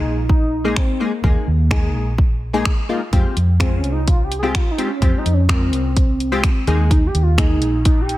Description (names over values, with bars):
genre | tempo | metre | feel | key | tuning
dance-pop | 127 BPM | 4/4 | straight | unclear | A4 = 441 Hz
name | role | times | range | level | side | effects
warm velvety synth lead | melody | 0.0-8.2 s | Bb3 to Ab4 | -23 LUFS | equal | chorus, digital delay
wavetable chord stab | accompaniment | 0.0-7.8 s | Ab3 to Bb4 | -23 LUFS | left 2 dB | sidechain pumping
vintage muted fingered electric bass | bass | 0.0-8.2 s | Bb1 to F2 | -19 LUFS | equal | sidechain pumping
house drum kit | drums | 0.3-8.2 s | finger snaps, hi-hat, kick drum | -17 LUFS | equal | soft clipping on snare
riser | sound effects | 7.6-8.2 s | none | -37 LUFS | equal | none
room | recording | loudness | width
digital ambience | dense, heavily limited modern master | -15 LUFS | side -16 dB against mid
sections
0.0-8.2 A section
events
riser 7.6-8.2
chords
0.0 Ebsus4; 3.1 Fmadd9; 6.7 Ebsus4